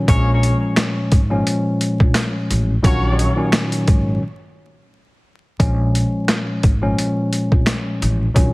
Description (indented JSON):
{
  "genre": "hip hop, boom-bap hip-hop",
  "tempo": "87 BPM",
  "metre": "4/4",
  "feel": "swing 54% on 16ths",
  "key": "Bb minor",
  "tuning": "A4 = 440 Hz",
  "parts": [
    { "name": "tine electric piano", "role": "accompaniment", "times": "0.0-8.5 s", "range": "Bb2 to Db4", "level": "-20 LUFS", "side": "left 1 dB", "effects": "overdrive, cassette tape, high-pass filter, low-pass filter" },
    { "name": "warm horn section", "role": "stabs", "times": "0.1-3.3 s", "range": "Bb3 to Db5", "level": "-26 LUFS", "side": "left 1 dB", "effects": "high-pass filter, low-pass filter, tape echo" },
    { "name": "upright bass", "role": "bass", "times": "0.1-8.5 s", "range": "Ab1 to Bb1", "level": "-19 LUFS", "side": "equal", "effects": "none" },
    { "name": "boom bap sampler-style drum kit", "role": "drums", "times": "0.1-8.5 s", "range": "handclaps, hi-hat, kick drum, snare drum", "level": "-16 LUFS", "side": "equal", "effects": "overdrive" }
  ],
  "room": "studio reverb",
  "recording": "heavily compressed radio sound, multiband compression, vinyl crackle",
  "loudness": "-15 LUFS",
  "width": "side -23 dB against mid",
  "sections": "0.0-5.6 A section; 5.6-8.5 B section",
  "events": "break 4.2-5.6",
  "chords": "0.1 Bbm7; 2.8 Ebm7; 5.6 Bbm7",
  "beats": "| 0.08 0.77 1.46 2.15 | 2.84 3.53 4.22 4.91 | 5.60 6.29 6.98 7.67 | 8.36"
}